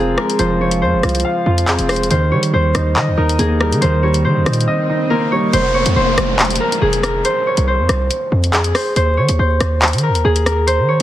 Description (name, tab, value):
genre	hip hop, drill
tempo	140 BPM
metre	4/4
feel	half-time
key	F minor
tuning	A4 = 439 Hz
part	concert harp	melody	0.0-11.0 s	Ab4 to Db5	-18 LUFS	equal	low-pass filter, ping-pong delay
part	dark baby grand piano	accompaniment	0.0-5.6 s	Eb3 to F5	-18 LUFS	equal	low-pass filter
part	hard-hitting 808-style bass	bass	0.0-11.0 s	F1 to Eb3	-17 LUFS	equal	none
part	drill drum kit	drums	0.2-11.0 s	handclaps, hi-hat, rim click	-18 LUFS	left 1 dB	none
part	swell and downlifter	sound effects	4.4-9.0 s	none	-24 LUFS	equal	none
room	light reverb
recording	dense, heavily limited modern master, vinyl crackle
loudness	-13 LUFS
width	side -13 dB against mid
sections	0.0-5.5 A section; 5.5-11.0 B section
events	swell 4.4-5.5; drums muted 4.7-5.5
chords	0.0 Fm; 2.1 Eb; 5.5 F5; 9.0 Eb5